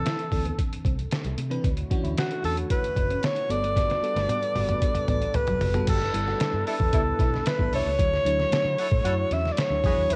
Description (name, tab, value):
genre	polished 1980s jazz-funk pop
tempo	113 BPM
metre	4/4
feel	straight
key	D major from 5.9 s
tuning	A4 = 440 Hz
part	breathy alto saxophone	melody	0.0-10.2 s	F#4 to E5	-29 LUFS	equal	cassette tape
part	bell-like FM electric piano	accompaniment	0.0-10.2 s	E3 to C#5	-36 LUFS	equal	tremolo, subtle chorus, cassette tape
part	mellow electric guitar	riff	0.0-10.2 s	F#3 to G4	-41 LUFS	equal	none
part	trip hop sampler-style drum kit	drums	0.1-10.2 s	crash cymbal, hi-hat, kick drum, snare drum, toms	-30 LUFS	equal	none
part	vintage muted fingered electric bass	bass	0.3-10.2 s	F#1 to D3	-32 LUFS	equal	none
part	hollow soft pad	sustained chords	1.6-10.2 s	D3 to C#5	-40 LUFS	equal	none
part	warm horn section	second line	6.7-10.0 s	D4 to B4	-39 LUFS	equal	cassette tape, analog delay
room	light reverb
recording	home recording on cassette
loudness	-25 LUFS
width	mono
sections	0.0-5.9 A section; 5.9-10.2 B section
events	drum fill 3.8-5.9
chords	0.0 C69; 1.6 Dmaj9; 3.5 Gmaj9; 5.9 G69; 8.0 Dmaj9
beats	0.06 0.58 1.11 | 1.64 2.17 2.70 3.23 | 3.76 4.29 4.82 5.35 | 5.88 6.40 6.93 7.46 | 7.99 8.52 9.05 9.57 | 10.10